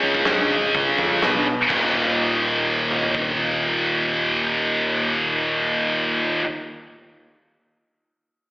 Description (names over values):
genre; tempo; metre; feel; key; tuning
hard rock; 124 BPM; 4/4; straight; unclear; A4 = 439 Hz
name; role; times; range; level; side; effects
high-gain distorted guitar; riff; 0.0-6.5 s; Eb2 to Db4; -19 LUFS; equal; distortion, slapback echo
growling picked electric bass; bass; 0.0-6.4 s; Eb1 to Cb3; -30 LUFS; equal; overdrive
big rock drum kit; drums; 0.0-3.3 s; crash cymbal, hi-hat, kick drum, snare drum, toms; -26 LUFS; equal; none
room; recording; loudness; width
light reverb, studio reverb; live gig heard through the venue's PA, recital hall reverb, AM radio sound; -18 LUFS; side -36 dB against mid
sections
0.0-1.7 A section; 1.7-5.6 B section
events
none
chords
0.0 Db5; 1.7 Eb5